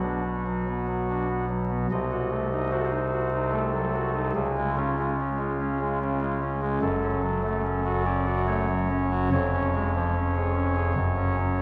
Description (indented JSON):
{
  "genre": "classical, chorale-style piece for pipe organ",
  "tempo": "73 BPM",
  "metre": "3/4",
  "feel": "rubato",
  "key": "unclear",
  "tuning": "A4 = 436 Hz",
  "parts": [
    { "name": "chamber organ, soft reed", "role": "solo", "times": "0.0-11.6 s", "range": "E#1 to Eb5", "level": "-26 LUFS", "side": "equal", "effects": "none" }
  ],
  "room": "wet church reverb, RT60 3.3 s",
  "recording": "worn, warbling old tape, cassette tape, vinyl crackle, warbly pitch drift",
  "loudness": "-27 LUFS",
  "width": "mono",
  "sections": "0.0-11.6 A section",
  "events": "none",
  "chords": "0.0 Bm; 1.9 Cdim7; 4.4 C#; 6.8 F#m; 9.3 C#/E#; 11.0 F#5"
}